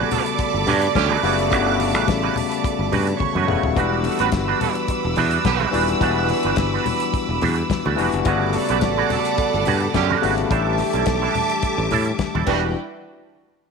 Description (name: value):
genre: disco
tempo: 107 BPM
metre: 4/4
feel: straight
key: unclear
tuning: A4 = 440 Hz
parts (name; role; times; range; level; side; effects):
- dark studio violin section; second line; 0.0-12.7 s; D4 to D6; -25 LUFS; right 13 dB; none
- barky tine electric piano; accompaniment; 0.0-12.8 s; C#3 to G4; -24 LUFS; left 12 dB; none
- electric guitar with an envelope filter; accompaniment; 0.0-12.7 s; G3 to B4; -26 LUFS; right 15 dB; ensemble chorus
- clear studio string section; sustained chords; 0.0-12.7 s; G3 to E6; -28 LUFS; left 1 dB; none
- modern bright fingered electric bass; bass; 0.0-12.7 s; D#1 to A2; -23 LUFS; equal; none
- clear horn section; stabs; 0.1-12.7 s; D3 to B4; -25 LUFS; right 14 dB; none
- damped 70s drum kit; drums; 0.1-12.6 s; crash cymbal, hi-hat, kick drum, snare drum, toms; -27 LUFS; left 3 dB; none
- congas; percussion; 0.1-12.7 s; none; -30 LUFS; left 6 dB; none
room: moderate echo chamber reverb, RT60 1.4 s, small room ambience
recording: 1960s-style stereo with parts hard left and right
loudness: -18 LUFS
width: side -5 dB against mid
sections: 0.0-12.8 A section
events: drum fill 3.2-3.8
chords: 0.0 Gmaj9#11; 3.8 Em9; 8.3 Gmaj9#11; 10.5 A7sus4; 12.5 Em9; 12.8 N.C.